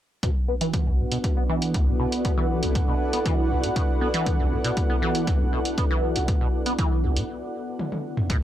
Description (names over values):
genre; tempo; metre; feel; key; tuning
acid house; 119 BPM; 4/4; straight; B minor; A4 = 440 Hz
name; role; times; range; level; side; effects
dark analog pad; sustained chords; 0.2-8.3 s; D4 to F#5; -32 LUFS; equal; chorus, sidechain pumping
liquid acid bass; riff; 0.2-8.4 s; B1 to B3; -27 LUFS; equal; phaser, tube saturation, wide subtle chorus, sidechain pumping, tape echo
electronic kick drum; drums; 0.2-8.4 s; none; -24 LUFS; equal; none
punchy analog drum machine; drums; 0.2-8.4 s; hi-hat, toms; -30 LUFS; equal; none
granular cloud pad; texture; 0.9-7.3 s; B3 to F#5; -30 LUFS; equal; built-in reverb, sidechain pumping
room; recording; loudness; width
light reverb; dry, gritty hardware recording; -22 LUFS; side -12 dB against mid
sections
0.2-8.3 A section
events
filter sweep on acid bass 0.2-8.3; break 7.3-8.3; drum fill 7.8-8.3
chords
0.2 Bm